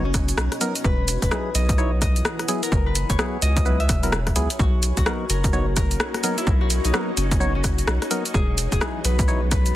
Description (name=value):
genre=UK garage, two-step garage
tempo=128 BPM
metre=4/4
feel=swing 61% on 16ths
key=B major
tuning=A4 = 440 Hz
part: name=Celtic harp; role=melody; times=0.0-9.8 s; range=C#4 to E5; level=-30 LUFS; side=left 3 dB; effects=digital delay
part: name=percussive organ stab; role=stabs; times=0.0-9.4 s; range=F#3 to C#5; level=-28 LUFS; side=equal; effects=chorus, vintage 12-bit sampler grit
part: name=saturated sub bass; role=bass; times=0.0-9.7 s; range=E1 to C#2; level=-23 LUFS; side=equal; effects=none
part: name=granular cloud pad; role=texture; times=0.0-9.8 s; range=E3 to B5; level=-34 LUFS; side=left 1 dB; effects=built-in reverb, sidechain pumping
part: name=electronic kick drum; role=drums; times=0.1-9.6 s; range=none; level=-23 LUFS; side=equal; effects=overdrive
part: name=punchy analog drum machine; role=drums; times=0.1-9.7 s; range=hi-hat, rim click, shaker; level=-26 LUFS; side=equal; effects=overdrive
part: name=soft string machine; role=sustained chords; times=5.3-9.8 s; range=G#3 to F#4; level=-35 LUFS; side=left 1 dB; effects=ensemble chorus, sidechain pumping
room=digital ambience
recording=dense, heavily limited modern master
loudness=-19 LUFS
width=side -14 dB against mid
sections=0.0-9.8 A section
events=none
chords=0.0 Bmaj7; 0.8 Emaj9; 2.5 F#9sus4; 4.6 Bmaj7; 8.3 Emaj9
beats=0.37 | 0.84 1.31 1.78 2.25 | 2.72 3.19 3.66 4.12 | 4.59 5.06 5.53 6.00 | 6.47 6.94 7.41 7.87 | 8.34 8.81 9.28 9.75